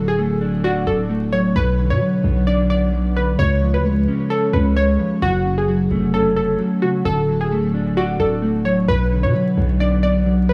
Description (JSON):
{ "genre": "hip hop, trap", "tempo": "131 BPM", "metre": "4/4", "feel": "half-time", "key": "unclear", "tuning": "A4 = 440 Hz", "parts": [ { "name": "glassy wavetable pluck", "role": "melody", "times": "0.0-10.5 s", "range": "F#4 to D5", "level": "-24 LUFS", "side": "equal", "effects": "chorus" }, { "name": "mellow electric guitar", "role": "accompaniment", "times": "0.0-10.5 s", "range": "F#2 to D5", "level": "-22 LUFS", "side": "equal", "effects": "analog chorus" }, { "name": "long sustained 808-style bass", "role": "bass", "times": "0.0-10.5 s", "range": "D1 to B2", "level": "-22 LUFS", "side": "equal", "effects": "none" } ], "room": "digital ambience", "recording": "worn, warbling old tape, cassette tape, vinyl crackle, warbly pitch drift, small room ambience", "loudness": "-18 LUFS", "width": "mono", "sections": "0.0-10.5 A section", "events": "none", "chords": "0.0 D; 1.6 Bm; 3.4 C#; 5.2 F#m; 7.1 D; 8.9 Bm", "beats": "0.18 0.64 1.10 | 1.56 2.02 2.47 2.93 | 3.39 3.85 4.30 4.76 | 5.22 5.68 6.14 6.59 | 7.05 7.51 7.97 8.43 | 8.88 9.34 9.80 10.26" }